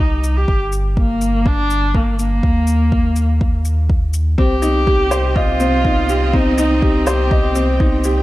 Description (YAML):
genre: piano and strings electronica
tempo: 123 BPM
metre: 4/4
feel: straight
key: C minor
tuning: A4 = 439 Hz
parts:
  - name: clear viola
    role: melody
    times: 0.0-8.0 s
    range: Bb3 to G4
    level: -20 LUFS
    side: equal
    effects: none
  - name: round analog bass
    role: bass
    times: 0.0-8.2 s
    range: G1 to Eb2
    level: -18 LUFS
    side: equal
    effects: sidechain pumping
  - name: shaker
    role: drums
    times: 0.2-8.1 s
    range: none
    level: -31 LUFS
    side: left 4 dB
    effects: overdrive
  - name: electronic kick drum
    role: drums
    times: 0.5-7.9 s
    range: none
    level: -17 LUFS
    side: equal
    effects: overdrive
  - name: bright studio string section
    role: sustained chords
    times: 4.4-8.2 s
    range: C3 to G5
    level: -26 LUFS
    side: right 2 dB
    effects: sidechain pumping
  - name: bright upright piano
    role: riff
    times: 4.4-8.2 s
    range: C4 to Eb5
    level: -18 LUFS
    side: left 1 dB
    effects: none
room: light reverb, studio reverb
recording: dark, warm production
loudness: -13 LUFS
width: side -17 dB against mid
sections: 0.0-8.2 A section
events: none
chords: 0.5 Gm; 2.4 Eb5; 4.4 Cm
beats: | 0.48 0.97 1.46 1.94 | 2.43 2.92 3.41 3.90 | 4.38 4.87 5.36 5.85 | 6.33 6.82 7.31 7.80